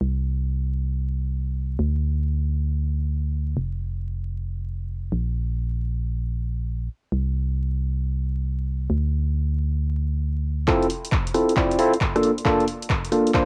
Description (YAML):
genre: UK garage, two-step garage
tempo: 135 BPM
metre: 4/4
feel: swing 67% on 16ths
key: F major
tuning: A4 = 440 Hz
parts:
  - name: organ-like FM bass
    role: bass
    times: 0.0-10.7 s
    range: F1 to D2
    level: -26 LUFS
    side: equal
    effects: sidechain pumping
  - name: barky tine electric piano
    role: stabs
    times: 10.7-13.5 s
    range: Bb3 to D5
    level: -22 LUFS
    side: equal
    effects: overdrive, low-pass filter, tape echo
  - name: electronic kick drum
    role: drums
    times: 10.7-13.5 s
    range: none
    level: -27 LUFS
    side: equal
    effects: cassette tape
  - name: punchy analog drum machine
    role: drums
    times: 10.7-13.5 s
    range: handclaps, hi-hat, rim click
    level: -30 LUFS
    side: equal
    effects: cassette tape
room: light reverb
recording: home recording on cassette, vinyl crackle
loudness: -25 LUFS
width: mono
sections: 0.0-10.7 A section; 10.7-13.5 B section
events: build-up 10.7-13.5; drum fill 10.7-13.5; filter sweep on tine electric piano 10.7-13.5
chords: 0.0 N.C.; 10.7 Fmaj7; 12.2 Bbmaj7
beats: | 0.01 0.46 0.90 1.34 | 1.79 2.23 2.68 3.12 | 3.57 4.01 4.46 4.90 | 5.34 5.79 6.23 6.68 | 7.12 7.57 8.01 8.46 | 8.90 9.34 9.79 10.23 | 10.68 11.12 11.57 12.01 | 12.46 12.90 13.34